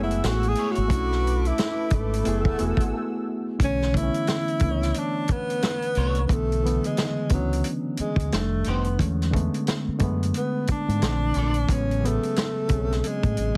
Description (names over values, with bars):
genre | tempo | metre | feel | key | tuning
R&B, neo-soul | 89 BPM | 4/4 | swing 59% on 16ths | B dorian | A4 = 440 Hz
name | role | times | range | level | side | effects
breathy tenor saxophone | melody | 0.0-13.6 s | F#3 to G#4 | -30 LUFS | equal | none
bright reed electric piano | accompaniment | 0.0-13.6 s | C#3 to C#5 | -31 LUFS | equal | none
warm analog pad | sustained chords | 0.0-3.6 s | A3 to E6 | -38 LUFS | equal | chorus
deep dub fingered electric bass | bass | 0.0-13.6 s | E1 to A2 | -28 LUFS | equal | none
warm soul drum kit | drums | 0.1-13.6 s | hi-hat, kick drum, snare drum | -28 LUFS | equal | none
electric guitar at the edge of break-up | second line | 0.2-0.8, 5.6-11.6 s | A3 to D5 | -35 LUFS | equal | ensemble chorus
room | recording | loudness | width
light reverb | heavily compressed radio sound, multiband compression | -24 LUFS | mono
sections
0.0-3.6 A section; 3.6-13.6 B section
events
break 2.9-3.6; tenor saxophone solo 3.6-13.6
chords
0.0 F#m9; 0.9 Bm9; 2.3 F#m9; 3.6 Bm9; 8.3 F9; 9.0 E13sus4; 11.0 A#maj9; 11.7 Amaj9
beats
0.23 | 0.91 1.58 2.25 2.93 | 3.60 4.28 4.95 5.62 | 6.30 6.97 7.65 8.32 | 8.99 9.67 10.34 11.02 | 11.69 12.37 13.04